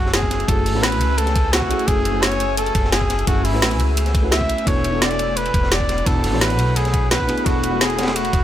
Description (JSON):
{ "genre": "liquid drum and bass", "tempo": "172 BPM", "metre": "4/4", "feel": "straight", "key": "F# minor", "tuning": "A4 = 440 Hz", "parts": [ { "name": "clear flugelhorn", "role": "melody", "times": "0.0-8.4 s", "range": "E4 to E5", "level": "-23 LUFS", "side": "right 1 dB", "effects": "digital delay" }, { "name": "mellow FM electric piano", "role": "accompaniment", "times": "0.0-8.4 s", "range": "A3 to G#5", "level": "-25 LUFS", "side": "left 2 dB", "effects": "chorus, ping-pong delay" }, { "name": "shimmering ambient pad", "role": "sustained chords", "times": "0.0-8.4 s", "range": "A3 to E6", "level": "-29 LUFS", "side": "left 2 dB", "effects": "chorus, built-in reverb" }, { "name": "upright bass", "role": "bass", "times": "0.0-8.4 s", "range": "E1 to C#2", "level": "-22 LUFS", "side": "equal", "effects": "none" }, { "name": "crunchy breakbeat drum kit", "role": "drums", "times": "0.1-8.4 s", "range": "hi-hat, ride cymbal, snare drum", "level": "-27 LUFS", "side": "equal", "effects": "high-pass filter on cymbals, high-pass filter on hats, high-pass filter on snare, high-pass filter on room" }, { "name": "drum and bass drum kit", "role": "drums", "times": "0.1-8.4 s", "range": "hi-hat, snare drum", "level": "-22 LUFS", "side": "right 1 dB", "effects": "none" }, { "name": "electronic kick drum", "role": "drums", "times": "0.2-8.4 s", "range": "none", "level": "-22 LUFS", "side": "equal", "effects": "none" } ], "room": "light reverb, studio ambience", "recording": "none", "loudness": "-16 LUFS", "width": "side -12 dB against mid", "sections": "0.0-8.4 A section", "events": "none", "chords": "0.0 F#m9; 4.7 E9sus4" }